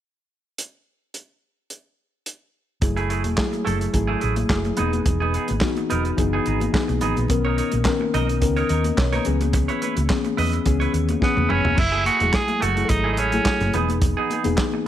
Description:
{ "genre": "disco", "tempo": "107 BPM", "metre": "4/4", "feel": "straight", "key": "unclear", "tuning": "A4 = 441 Hz", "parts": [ { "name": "warm soul drum kit", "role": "drums", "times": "0.6-14.7 s", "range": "crash cymbal, handclaps, hi-hat, kick drum, snare drum, toms", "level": "-24 LUFS", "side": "right 1 dB", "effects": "none" }, { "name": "clean electric guitar", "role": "accompaniment", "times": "2.8-14.8 s", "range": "A3 to D#5", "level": "-28 LUFS", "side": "right 6 dB", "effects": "spring reverb" }, { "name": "mellow reed electric piano", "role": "accompaniment", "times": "2.8-14.9 s", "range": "D#3 to D#5", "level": "-24 LUFS", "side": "left 5 dB", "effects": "none" }, { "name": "hollow-body short-scale fingered electric bass", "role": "bass", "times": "2.8-14.5 s", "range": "E1 to E2", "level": "-24 LUFS", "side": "right 1 dB", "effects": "none" }, { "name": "congas", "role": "percussion", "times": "2.8-14.8 s", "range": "none", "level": "-32 LUFS", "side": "left 4 dB", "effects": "none" }, { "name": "raspy tenor saxophone", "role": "melody", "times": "11.2-13.7 s", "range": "B3 to G#4", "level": "-22 LUFS", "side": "right 3 dB", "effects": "none" } ], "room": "small room reverb", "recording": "none", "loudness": "-19 LUFS", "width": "side -11 dB against mid", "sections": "0.6-2.8 A section; 2.8-11.8 B section; 11.8-14.9 C section", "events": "drum fill 11.2-11.8", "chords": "0.6 N.C.; 2.8 F#m9; 4.8 Emaj7; 7.3 Bmaj9; 9.3 C#m7; 11.8 F#m9; 13.7 Emaj7" }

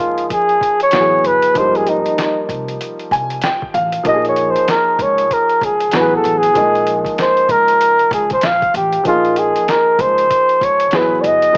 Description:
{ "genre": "hip hop, jazz-hop", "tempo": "96 BPM", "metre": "4/4", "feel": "swing 61% on 16ths", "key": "Bb dorian", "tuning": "A4 = 440 Hz", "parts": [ { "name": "breathy flugelhorn", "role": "melody", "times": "0.0-11.6 s", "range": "Eb4 to F5", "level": "-12 LUFS", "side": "equal", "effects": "none" }, { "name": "warm upright piano", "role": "accompaniment", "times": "0.0-11.6 s", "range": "F3 to Ab5", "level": "-19 LUFS", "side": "equal", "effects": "cassette tape" }, { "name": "upright bass", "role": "bass", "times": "0.0-11.6 s", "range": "G1 to F2", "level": "-29 LUFS", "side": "equal", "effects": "tube saturation" }, { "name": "lo-fi sampler-style drum kit", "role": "drums", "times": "0.2-11.6 s", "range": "hi-hat, kick drum, snare drum", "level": "-24 LUFS", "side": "equal", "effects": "cassette tape" } ], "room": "light reverb, small room ambience", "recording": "home recording on cassette, vinyl crackle, small speaker sound", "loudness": "-12 LUFS", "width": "side -39 dB against mid", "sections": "0.0-9.1 A section; 9.1-11.6 B section", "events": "flugelhorn solo 0.0-9.1; upright piano fill 2.8-4.0", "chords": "0.0 Bbm7; 0.9 Amaj9; 1.6 Abmaj9; 4.0 Bbm7; 5.9 Asus2; 6.5 Bbm7; 10.9 Asus2" }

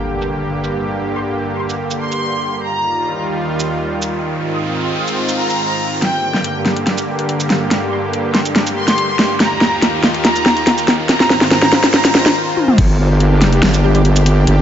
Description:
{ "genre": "heavy wobble dubstep", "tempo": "142 BPM", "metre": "4/4", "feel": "half-time", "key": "G phrygian", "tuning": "A4 = 442 Hz", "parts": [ { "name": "supersaw pad", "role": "sustained chords", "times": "0.0-14.6 s", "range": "Eb2 to C5", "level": "-19 LUFS", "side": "right 1 dB", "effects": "sidechain pumping" }, { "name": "impact and riser", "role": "sound effects", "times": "0.0-12.4 s", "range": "none", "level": "-27 LUFS", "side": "equal", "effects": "none" }, { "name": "dubstep drum kit", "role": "drums", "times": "0.2-14.6 s", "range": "crash cymbal, hi-hat, shaker, snare drum, toms", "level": "-15 LUFS", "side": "equal", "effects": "overdrive, low-pass filter on hats, low-pass filter on snare, low-pass filter on perc, low-pass filter on toms, low-pass filter on cymbals" }, { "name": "clear studio violin section", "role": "melody", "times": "1.2-12.3 s", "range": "G5 to Eb6", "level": "-21 LUFS", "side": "equal", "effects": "dub echo" }, { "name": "wobble bass", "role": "bass", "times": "12.8-14.6 s", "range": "G1", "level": "-12 LUFS", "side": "equal", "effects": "chorus, overdrive" }, { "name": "electronic kick drum", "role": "drums", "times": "12.8-12.9 s", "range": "none", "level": "-13 LUFS", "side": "equal", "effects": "overdrive" }, { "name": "orchestra-hit-like synth stab", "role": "stabs", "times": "13.8-14.0 s", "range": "G3 to G4", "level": "-19 LUFS", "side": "left 1 dB", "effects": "built-in reverb, cassette tape, dub echo" } ], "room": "light reverb", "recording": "nothing above 7.6 kHz", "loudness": "-13 LUFS", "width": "side -10 dB against mid", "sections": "0.0-6.0 A section; 6.0-12.8 B section; 12.8-14.6 C section", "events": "impact 0.0-1.0; riser 3.8-6.0, 6.0-12.4; build-up 6.0-12.8; drum fill 6.0-12.4, 12.6; break 12.4-12.8; drop 12.8-14.6", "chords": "0.0 Gm; 2.6 Ebadd9; 4.3 Ab6; 6.0 Gm; 9.4 Ebadd9; 11.1 Ab6; 12.8 Gm" }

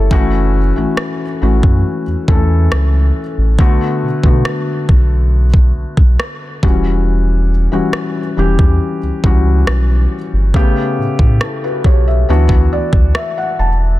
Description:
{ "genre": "contemporary R&B", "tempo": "69 BPM", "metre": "4/4", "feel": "straight", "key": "E dorian", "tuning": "A4 = 440 Hz", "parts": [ { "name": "felt-muted upright piano", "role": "accompaniment", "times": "0.0-14.0 s", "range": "C#3 to A5", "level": "-17 LUFS", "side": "left 2 dB", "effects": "none" }, { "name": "sub bass with octave", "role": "bass", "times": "0.0-14.0 s", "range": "E1 to B2", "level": "-13 LUFS", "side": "equal", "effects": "none" }, { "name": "smooth R&B drum kit", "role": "drums", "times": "0.1-13.4 s", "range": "kick drum, rim click", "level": "-13 LUFS", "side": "equal", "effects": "soft clipping on snare" } ], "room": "little or no reverb", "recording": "dense, heavily limited modern master", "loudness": "-11 LUFS", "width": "side -16 dB against mid", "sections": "0.0-14.0 A section", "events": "felt piano fill 12.3-14.0", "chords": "0.1 F#m7; 3.6 Bm7; 6.6 Em69; 10.5 A9; 12.3 D69" }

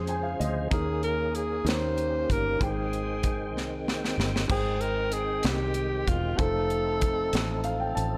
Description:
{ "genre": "slow gospel", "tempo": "63 BPM (dotted quarters)", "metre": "6/8", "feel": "straight", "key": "Ab major", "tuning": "A4 = 440 Hz", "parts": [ { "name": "warm alto saxophone", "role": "melody", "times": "0.0-8.0 s", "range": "F4 to C5", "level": "-32 LUFS", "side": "equal", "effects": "none" }, { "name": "clear upright piano", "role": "accompaniment", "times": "0.0-8.2 s", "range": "Ab2 to A5", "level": "-36 LUFS", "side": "equal", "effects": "none" }, { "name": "tonewheel organ", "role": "sustained chords", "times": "0.0-8.2 s", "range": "Db3 to G5", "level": "-38 LUFS", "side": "equal", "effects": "slow rotary speaker, overdrive, chorus vibrato" }, { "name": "fingered electric bass", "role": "bass", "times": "0.0-8.2 s", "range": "Fb1 to F2", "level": "-34 LUFS", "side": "equal", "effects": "none" }, { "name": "crisp fusion drum kit", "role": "drums", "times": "0.1-8.1 s", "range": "crash cymbal, hi-hat, kick drum, snare drum", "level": "-33 LUFS", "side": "equal", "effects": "none" } ], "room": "light reverb, small room reverb", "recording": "none", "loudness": "-28 LUFS", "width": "mono", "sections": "0.0-4.5 A section; 4.5-8.2 A section", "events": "upright piano fill 0.0-0.7, 7.3-8.2; drum fill 3.5-4.5", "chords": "0.0 Dbmaj7; 0.7 Eb7sus4; 1.7 Eb7; 2.6 Abmaj7; 6.4 F7" }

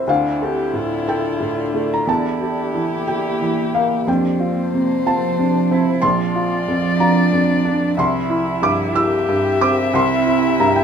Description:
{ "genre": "neoclassical piano and strings", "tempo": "61 BPM (dotted quarters)", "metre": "6/8", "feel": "rubato", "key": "D minor", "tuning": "A4 = 441 Hz", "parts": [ { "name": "felt-muted upright piano", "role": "accompaniment", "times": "0.0-10.8 s", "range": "Bb1 to E6", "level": "-18 LUFS", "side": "right 1 dB", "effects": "none" }, { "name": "glassy FM pad", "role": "sustained chords", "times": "0.0-10.8 s", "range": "F3 to A5", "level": "-23 LUFS", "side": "right 2 dB", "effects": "ensemble chorus, built-in reverb" }, { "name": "dark violin", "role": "melody", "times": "0.1-10.8 s", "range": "E4 to E5", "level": "-24 LUFS", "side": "left 6 dB", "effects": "none" }, { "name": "warm cello", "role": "second line", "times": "0.1-10.8 s", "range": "Bb3 to G4", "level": "-25 LUFS", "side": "right 2 dB", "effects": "none" } ], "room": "moderate studio reverb, RT60 0.9 s", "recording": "minimal, uncompressed stereo recording", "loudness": "-16 LUFS", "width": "side -7 dB against mid", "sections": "0.1-10.8 A section", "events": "none", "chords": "0.1 Dmadd9; 2.1 Edim; 4.1 F; 6.0 Bbadd9; 8.0 C" }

